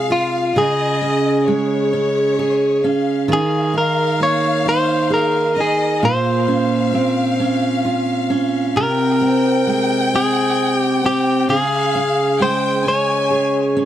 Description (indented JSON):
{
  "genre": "six-eight pop ballad",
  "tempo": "44 BPM (dotted quarters)",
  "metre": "6/8",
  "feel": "straight",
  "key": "unclear",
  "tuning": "A4 = 440 Hz",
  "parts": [
    { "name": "direct-recorded clean electric guitar", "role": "melody", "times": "0.0-13.9 s", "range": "F4 to Db5", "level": "-19 LUFS", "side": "left 1 dB", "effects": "tape echo" },
    { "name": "rich studio violin section", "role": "second line", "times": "0.0-13.8 s", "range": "Db5 to Ab5", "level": "-24 LUFS", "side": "left 3 dB", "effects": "none" },
    { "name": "fingerpicked steel-string acoustic guitar", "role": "accompaniment", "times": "0.0-13.9 s", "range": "Bb2 to Ab4", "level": "-18 LUFS", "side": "right 2 dB", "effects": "none" }
  ],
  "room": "little or no reverb",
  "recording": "dry, close 1970s-style studio recording",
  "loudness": "-15 LUFS",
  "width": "side -11 dB against mid",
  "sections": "0.0-3.3 A section; 3.3-13.9 A section",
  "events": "none",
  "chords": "0.0 Fm/C; 0.6 Db5; 3.3 Ebsus4; 6.0 Bbmadd9; 8.8 Abmaj9/C; 11.5 Db"
}